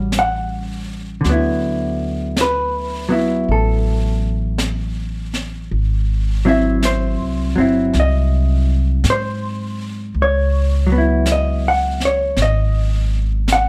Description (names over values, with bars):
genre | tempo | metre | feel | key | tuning
jazz ballad | 54 BPM | 4/4 | swing 67% on 8ths | C# minor | A4 = 440 Hz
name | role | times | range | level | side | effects
hollow-body jazz guitar | accompaniment | 0.0-13.7 s | D3 to F#5 | -21 LUFS | equal | none
upright bass | bass | 0.0-13.7 s | G1 to G#2 | -21 LUFS | equal | none
jazz brush drum kit | drums | 0.1-13.7 s | brushed snare drum, hi-hat, snare drum | -30 LUFS | equal | none
room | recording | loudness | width
light reverb | none | -18 LUFS | mono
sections
0.0-13.7 A section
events
none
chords
0.0 A6; 1.2 D69; 5.7 G#7b13; 10.2 C#m11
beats
0.12 | 1.24 2.35 3.47 4.58 | 5.70 6.81 7.93 9.04 | 10.15 11.27 12.38 13.49